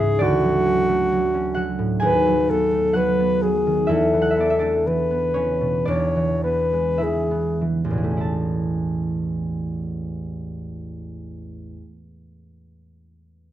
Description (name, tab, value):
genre	classical, romantic duo for alto saxophone and harp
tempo	47-68 BPM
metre	4/4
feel	rubato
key	A major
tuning	A4 = 440 Hz
part	warm alto saxophone	melody	0.0-7.6 s	F#4 to C#5	-20 LUFS	left 2 dB	none
part	concert harp	accompaniment	0.0-12.1 s	A1 to A5	-22 LUFS	right 2 dB	none
room	light reverb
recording	none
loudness	-19 LUFS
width	side -12 dB against mid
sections	0.0-8.2 A section; 8.2-12.9 B section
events	slowing down 0.0-8.2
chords	0.2 Dmaj7; 2.0 B7/D#; 3.9 E7sus4; 5.9 E7; 8.2 A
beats	| 0.21 1.12 2.02 2.96 | 3.90 4.85 5.88 7.01 | 8.23 9.43 10.61 11.75